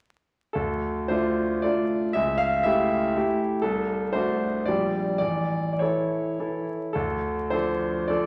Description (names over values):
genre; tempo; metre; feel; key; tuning
classical, romantic triple-time dance for piano with dotted rhythms; 96-128 BPM; 3/4; rubato; D minor; A4 = 437 Hz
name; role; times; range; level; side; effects
clear concert grand piano; solo; 0.5-8.3 s; A1 to F5; -26 LUFS; equal; none
room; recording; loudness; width
wet recital hall reverb, RT60 1.4 s; vinyl crackle; -26 LUFS; mono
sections
0.6-8.3 A section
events
none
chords
0.6 Dm; 2.1 A7/C#; 3.6 D7/C; 4.7 Gm/Bb; 5.2 A; 6.9 Dm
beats
| 0.55 1.10 1.64 | 2.15 2.64 3.15 | 3.63 4.14 4.67 | 5.20 5.81 6.39 | 6.95 7.52 8.09